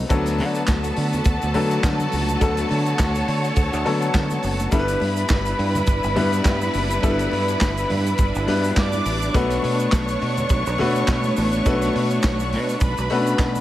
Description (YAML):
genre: disco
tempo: 104 BPM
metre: 4/4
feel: swing 56% on 16ths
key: D major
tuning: A4 = 440 Hz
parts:
  - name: clear grand piano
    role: accompaniment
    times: 0.0-13.6 s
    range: F#3 to B4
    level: -24 LUFS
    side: left 3 dB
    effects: none
  - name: clear symphonic string section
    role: sustained chords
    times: 0.0-13.6 s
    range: D3 to C#5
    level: -27 LUFS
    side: right 1 dB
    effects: none
  - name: fingered electric bass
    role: bass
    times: 0.0-13.6 s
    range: F#1 to D3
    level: -24 LUFS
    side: equal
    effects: none
  - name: clear studio string section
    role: second line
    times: 0.1-13.6 s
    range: A4 to D6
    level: -27 LUFS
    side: equal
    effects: none
  - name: vintage drum kit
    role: drums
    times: 0.1-13.6 s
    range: handclaps, hi-hat, kick drum, snare drum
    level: -24 LUFS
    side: equal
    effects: none
  - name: congas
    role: percussion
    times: 0.1-13.6 s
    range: none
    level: -32 LUFS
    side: left 1 dB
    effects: none
  - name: egg shaker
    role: percussion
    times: 0.1-13.6 s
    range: none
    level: -42 LUFS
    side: right 8 dB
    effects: none
room: light reverb, small room ambience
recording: none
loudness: -18 LUFS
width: side -14 dB against mid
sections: 0.1-13.6 A section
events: none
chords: 0.1 D6; 4.7 G6; 9.3 Bm7